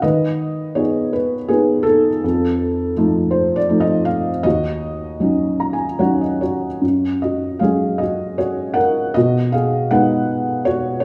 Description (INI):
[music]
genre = classical, lyrical solo piano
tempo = 80 BPM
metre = 3/4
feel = rubato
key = Eb minor, F# major from 6.8 s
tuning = A4 = 440 Hz
[part]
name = felt-muted upright piano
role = solo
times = 0.0-11.0 s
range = Eb2 to Bb5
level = -18 LUFS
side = equal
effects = none
[sound]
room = moderate recital hall reverb, RT60 1.5 s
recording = small room ambience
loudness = -18 LUFS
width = mono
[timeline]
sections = 0.0-6.8 A section; 6.8-11.0 B section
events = felt piano fill 5.2-6.8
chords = 0.0 Abm/Eb; 2.2 F7; 4.5 Ebm7; 6.8 F#sus2; 9.2 B6